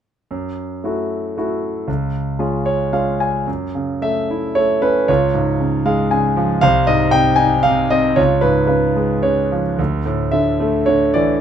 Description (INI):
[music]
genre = classical, lyrical solo piano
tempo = 114 BPM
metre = 3/4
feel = uneven beats, rubato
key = F# minor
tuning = A4 = 440 Hz
[part]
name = clear concert grand piano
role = solo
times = 0.3-11.4 s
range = B#1 to G#5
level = -15 LUFS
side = equal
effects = none
[sound]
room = light reverb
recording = close, detailed microphones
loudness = -15 LUFS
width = side -9 dB against mid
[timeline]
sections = 0.3-3.5 A section; 3.5-11.4 B section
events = grand piano fill 2.4-3.5, 5.6-6.6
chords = 0.3 F#m7; 1.9 C#; 3.5 F#m7; 5.1 C#; 6.6 G#/B#; 8.2 C#7; 9.8 Dsus2